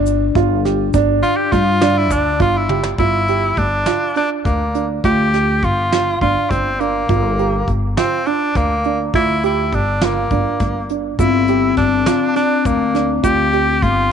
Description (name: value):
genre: progressive instrumental, band music in an uneven meter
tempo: 205 BPM (eighths)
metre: 7/8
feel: straight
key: G dorian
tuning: A4 = 440 Hz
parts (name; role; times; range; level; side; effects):
- vibraphone with soft mallets; second line; 0.0-2.6, 11.2-14.1 s; C4 to D4; -20 LUFS; left 14 dB; none
- warm concert grand piano; arpeggios; 0.0-14.0 s; D4 to G4; -20 LUFS; right 11 dB; none
- upright bass; bass; 0.0-14.1 s; G1 to G2; -20 LUFS; left 1 dB; none
- soft brush drum kit; drums; 0.1-14.0 s; hi-hat, kick drum, snare drum, toms; -23 LUFS; equal; none
- egg shaker; percussion; 0.1-2.4, 11.2-13.5 s; none; -36 LUFS; left 20 dB; none
- edgy tenor saxophone; melody; 1.2-14.1 s; Bb3 to G4; -18 LUFS; left 1 dB; none
room: moderate spring reverb, RT60 2.6 s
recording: 1960s-style stereo with parts hard left and right, nothing above 11.0 kHz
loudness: -14 LUFS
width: side -7 dB against mid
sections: 0.0-3.0 A section; 3.0-14.1 B section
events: tenor saxophone solo 0.0-3.0; drum fill 2.7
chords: 0.0 G7(no3); 3.0 Gm7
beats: 0.06 0.35 0.65 | 0.94 1.23 1.52 1.82 2.11 2.40 2.69 | 2.99 3.28 3.57 3.87 4.16 4.45 4.75 | 5.04 5.33 5.62 5.92 6.21 6.50 6.80 | 7.09 7.38 7.67 7.97 8.26 8.55 8.85 | 9.14 9.43 9.73 10.02 10.31 10.61 10.90 | 11.19 11.49 11.78 12.07 12.37 12.66 12.95 | 13.24 13.54 13.83